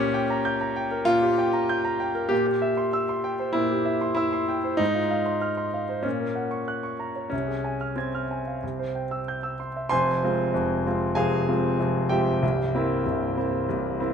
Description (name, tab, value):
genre	classical, virtuoso piano study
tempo	96 BPM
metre	4/4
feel	rubato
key	F minor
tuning	A4 = 440 Hz
part	clear grand piano	solo	0.0-14.1 s	C1 to Ab6	-23 LUFS	equal	none
room	moderate recital hall reverb, RT60 1.5 s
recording	close, detailed microphones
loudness	-23 LUFS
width	side -7 dB against mid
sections	0.0-9.9 A section; 9.9-14.1 B section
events	none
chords	0.0 Gdim/Bb; 2.3 C7/Bb; 4.8 Fm/Ab; 6.0 Gb/Bb; 7.3 Fm/C; 8.6 C; 9.9 Fm; 12.4 C7